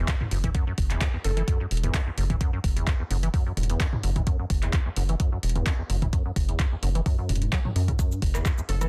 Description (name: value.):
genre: acid house.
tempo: 129 BPM.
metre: 4/4.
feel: swing 54% on 16ths.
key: F# minor.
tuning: A4 = 437 Hz.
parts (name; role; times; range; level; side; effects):
acid bass, square; riff; 0.0-8.9 s; E2 to F#3; -33 LUFS; equal; analog chorus, sidechain pumping.
round analog bass; bass; 0.0-8.9 s; E1 to F#2; -28 LUFS; equal; sidechain pumping.
electronic kick drum; drums; 0.1-8.6 s; none; -27 LUFS; equal; overdrive.
punchy analog drum machine; drums; 0.1-8.9 s; handclaps, hi-hat, rim click, shaker, toms; -35 LUFS; equal; none.
glassy wavetable pluck; melody; 1.2-1.4, 8.7-8.9 s; A4; -40 LUFS; equal; chorus, vintage 12-bit sampler grit, tape echo.
room: little or no reverb.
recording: dense, heavily limited modern master.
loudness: -26 LUFS.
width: mono.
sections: 0.0-8.9 A section.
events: none.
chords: 0.0 F#7(no3).